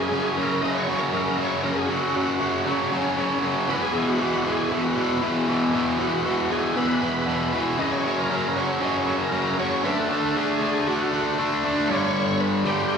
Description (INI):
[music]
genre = rock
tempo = 117 BPM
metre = 4/4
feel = straight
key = unclear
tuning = A4 = 440 Hz
[part]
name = overdriven tonewheel organ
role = melody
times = 0.0-13.0 s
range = C#4 to D#5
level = -28 LUFS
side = equal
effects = slow rotary speaker, chorus vibrato, slapback echo
[part]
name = distorted electric guitar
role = riff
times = 0.0-13.0 s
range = E2 to D4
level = -22 LUFS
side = equal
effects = overdrive, slapback echo
[sound]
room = light reverb, digital ambience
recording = live gig heard through the venue's PA, recital hall reverb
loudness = -21 LUFS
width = side -6 dB against mid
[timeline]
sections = 0.0-11.9 A section; 11.9-13.0 B section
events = none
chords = 0.0 F#5; 3.7 E5; 7.8 F#5; 9.8 D; 11.9 G5